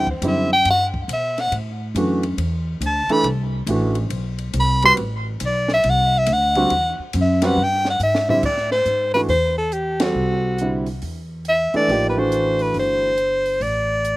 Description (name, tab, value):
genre	modal jazz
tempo	139 BPM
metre	4/4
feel	swing 65% on 8ths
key	A dorian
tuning	A4 = 435 Hz
part	breathy soprano saxophone	melody	0.0-14.2 s	F#4 to C6	-18 LUFS	equal	slapback echo
part	warm upright piano	accompaniment	0.0-13.1 s	D3 to B4	-23 LUFS	right 2 dB	slapback echo
part	upright bass	bass	0.0-14.2 s	G1 to B2	-23 LUFS	equal	none
part	compact cocktail drum kit	drums	0.1-14.2 s	crash cymbal, hi-hat, kick drum, ride cymbal, snare drum, toms	-31 LUFS	left 1 dB	none
room	little or no reverb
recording	recorded outdoors, with no room sound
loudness	-17 LUFS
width	side -18 dB against mid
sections	0.0-8.4 A section; 8.4-14.2 B section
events	soprano saxophone solo 0.0-8.4; drum fill 8.0-8.4; band accent 9.9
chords	0.0 Cadd9; 1.5 Am69; 5.0 Cadd9/A; 8.4 Am6; 11.9 Cadd9